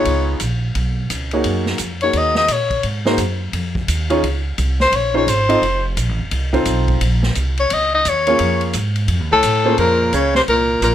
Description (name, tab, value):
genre	jazz, small-group swing and bop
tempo	173 BPM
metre	4/4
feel	swing 63% on 8ths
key	Bb minor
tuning	A4 = 440 Hz
part	breathy soprano saxophone	melody	0.0-10.9 s	A4 to Eb5	-16 LUFS	left 3 dB	none
part	warm baby grand piano	accompaniment	0.0-10.1 s	Bb3 to Eb5	-19 LUFS	right 1 dB	none
part	upright bass	bass	0.0-10.9 s	F1 to Bb2	-20 LUFS	right 1 dB	none
part	vintage drum kit	drums	0.1-10.9 s	hi-hat, kick drum, ride cymbal, snare drum	-25 LUFS	equal	none
part	warm baritone saxophone	second line	9.3-10.9 s	A2 to Db3	-20 LUFS	right 3 dB	none
room	light reverb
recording	none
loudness	-15 LUFS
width	side -11 dB against mid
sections	0.0-9.8 A section; 9.8-10.9 B section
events	soprano saxophone solo 0.0-9.8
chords	0.1 Db7; 1.4 Gb69; 2.8 Ab7(no3); 4.2 Dbmaj7; 5.6 F7; 7.0 Bbm9; 9.1 F7alt; 9.8 Bbm9